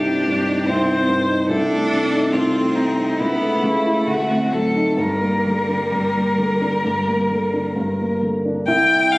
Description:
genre	classical, slow romantic movement for piano trio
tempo	64-73 BPM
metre	4/4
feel	rubato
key	G minor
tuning	A4 = 440 Hz
part	rich violin	melody	0.0-9.2 s	Eb4 to G5	-21 LUFS	left 1 dB	none
part	rich cello	second line	0.0-7.7 s	F#3 to D4	-24 LUFS	right 1 dB	none
part	dark grand piano	accompaniment	0.0-9.2 s	C2 to E4	-20 LUFS	equal	none
room	wet recital hall reverb, RT60 1.7 s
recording	recorded on a phone in the room, studio reverb, compression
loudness	-17 LUFS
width	side -21 dB against mid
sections	0.0-8.7 A section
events	none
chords	0.0 Cm; 1.5 Adim/C; 3.2 A/C#; 4.1 D7b9; 5.0 Gm; 8.7 C5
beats	0.68 | 1.50 2.33 3.20 4.08 | 4.98 5.92 6.84 7.75 | 8.67

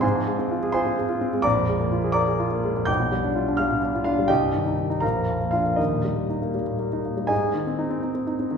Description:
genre	classical, virtuoso piano study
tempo	78-86 BPM (dotted quarters)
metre	6/8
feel	rubato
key	Eb major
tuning	A4 = 435 Hz
part	warm concert grand piano	solo	0.0-8.6 s	Bb1 to G6	-21 LUFS	equal	none
room	wet recital hall reverb, RT60 1.6 s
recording	recorded in a church or concert hall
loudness	-21 LUFS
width	side -6 dB against mid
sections	0.0-7.3 A section; 7.3-8.6 B section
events	none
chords	0.0 Fm/Ab; 1.4 Bb7; 2.9 G7/B; 4.3 Cm; 5.0 Bb; 5.8 Eb; 7.3 Ab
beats	| 0.03 0.74 | 1.44 2.15 | 2.88 3.59 | 4.30 5.03 | 5.79 6.55 | 7.31 8.04

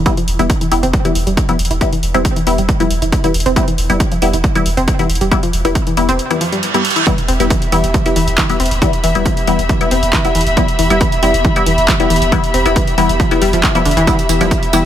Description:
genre	driving peak-time techno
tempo	137 BPM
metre	4/4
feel	straight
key	E minor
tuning	A4 = 438 Hz
part	saturated sub bass	bass	0.0-14.8 s	E1	-18 LUFS	equal	sidechain pumping, low-pass filter
part	filtered dub chord stab	stabs	0.1-14.9 s	G3 to E4	-18 LUFS	left 3 dB	phaser, sidechain pumping, ping-pong delay
part	electronic kick drum	drums	0.1-14.6 s	none	-16 LUFS	equal	overdrive, studio reverb
part	techno drum kit	drums	0.1-14.8 s	handclaps, hi-hat, tambourine	-22 LUFS	equal	overdrive, studio reverb
part	analog pluck	riff	0.2-14.8 s	D3 to E4	-19 LUFS	equal	chorus, tube saturation, sidechain pumping, digital delay
part	reverse cymbal and impact	sound effects	6.4-8.8 s	none	-20 LUFS	right 6 dB	none
part	muted studio string section	texture	7.1-14.9 s	B3 to B5	-18 LUFS	equal	sidechain pumping
room	light reverb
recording	none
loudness	-12 LUFS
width	side -10 dB against mid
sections	0.0-7.1 A section; 7.1-14.9 B section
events	filter sweep on synth arpeggio sound 0.0-7.1; reverse cymbal 6.4-7.1; drop 7.1-14.9; impact 7.1-8.8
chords	0.0 Em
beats	| 0.06 0.50 0.94 1.37 | 1.81 2.25 2.69 3.12 | 3.56 4.00 4.44 4.88 | 5.32 5.75 6.19 6.63 | 7.07 7.50 7.94 8.38 | 8.82 9.26 9.69 10.13 | 10.57 11.01 11.45 11.88 | 12.32 12.76 13.20 13.64 | 14.07 14.51

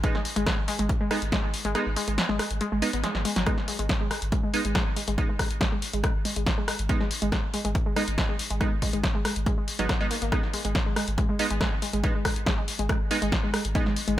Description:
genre	driving peak-time techno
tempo	140 BPM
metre	4/4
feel	straight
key	G# minor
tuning	A4 = 437 Hz
part	warbly dusty pluck	riff	0.0-14.2 s	F#3 to B3	-31 LUFS	equal	chorus, tube saturation, sidechain pumping, dub echo
part	wavetable chord stab	stabs	0.0-13.8 s	G#3 to D#4	-32 LUFS	right 3 dB	cassette tape, sidechain pumping, dub echo
part	warm sub bass	bass	0.0-14.2 s	G#1	-32 LUFS	equal	tube saturation, sidechain pumping, low-pass filter
part	electronic kick drum	drums	0.0-13.8 s	none	-27 LUFS	equal	none
part	punchy analog drum machine	drums	0.0-14.2 s	hi-hat, rim click, snare drum	-30 LUFS	left 1 dB	none
room	light reverb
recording	none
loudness	-24 LUFS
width	side -13 dB against mid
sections	0.0-14.2 A section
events	kick drops out 1.8-3.5; drum fill 3.0-3.5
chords	none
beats	| 0.04 0.47 0.89 1.32 | 1.75 2.18 2.61 3.04 | 3.46 3.89 4.32 4.75 | 5.18 5.61 6.04 6.46 | 6.89 7.32 7.75 8.18 | 8.61 9.04 9.46 9.89 | 10.32 10.75 11.18 11.61 | 12.04 12.46 12.89 13.32 | 13.75

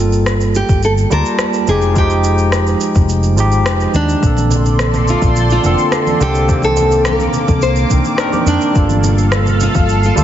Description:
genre	sunset chillout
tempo	106 BPM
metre	4/4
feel	straight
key	Bb major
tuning	A4 = 440 Hz
part	nylon-string guitar	melody	0.0-10.2 s	D4 to C5	-18 LUFS	equal	tape echo
part	barky tine electric piano	accompaniment	0.0-10.2 s	D3 to A5	-18 LUFS	right 1 dB	overdrive, auto-pan, low-pass filter, tape echo
part	woody fretless electric bass	bass	0.0-10.2 s	F1 to F2	-15 LUFS	equal	ensemble chorus
part	electronic shaker and rim click	drums	0.1-10.2 s	none	-22 LUFS	equal	none
part	electronic kick drum	drums	0.7-9.9 s	none	-14 LUFS	equal	none
part	lush unison pad	sustained chords	4.5-10.2 s	Bb3 to D6	-20 LUFS	right 1 dB	chorus, phaser
part	congas and bongos	percussion	4.4-10.2 s	none	-24 LUFS	left 4 dB	none
room	moderate lush hall reverb, RT60 2.0 s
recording	heavily compressed radio sound, nothing above 7.7 kHz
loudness	-11 LUFS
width	side -11 dB against mid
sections	0.0-10.2 A section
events	kick drops out 3.1-4.2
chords	0.0 Gm9; 1.7 Fm9; 4.2 Bbmaj9; 6.5 Cm9; 8.8 Gm9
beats	0.26 0.83 1.40 | 1.96 2.53 3.09 3.66 | 4.23 4.79 5.36 5.92 | 6.49 7.06 7.62 8.19 | 8.76 9.32 9.89

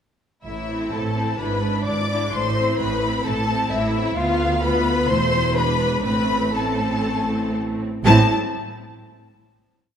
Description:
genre	quick classical-period movement for string orchestra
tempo	118-132 BPM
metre	4/4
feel	rubato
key	A minor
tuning	A4 = 438 Hz
part	warm studio violin section	melody	0.5-8.3 s	E5 to D6	-26 LUFS	left 3 dB	none
part	rich studio violin section	second line	0.5-8.3 s	E4 to A5	-25 LUFS	left 3 dB	none
part	rich studio cello section	bass	0.5-8.3 s	D2 to A2	-26 LUFS	right 3 dB	none
part	rich studio double bass section	bass	0.5-8.3 s	E1 to D2	-26 LUFS	right 2 dB	none
part	rich studio viola section	accompaniment	0.7-8.3 s	G#3 to F4	-24 LUFS	equal	none
room	moderate scoring stage reverb, RT60 1.7 s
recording	none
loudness	-18 LUFS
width	side -8 dB against mid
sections	0.5-8.1 A section; 8.1-10.0 final chord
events	none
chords	0.5 Am; 1.4 E7/G#; 2.3 Am; 4.2 Bdim/D; 5.1 Am/E; 5.6 E7; 6.1 Am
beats	| 0.46 0.93 1.40 1.87 | 2.33 2.79 3.25 3.71 | 4.17 4.63 5.09 5.57 | 6.06 6.55 7.06 7.56 | 8.06

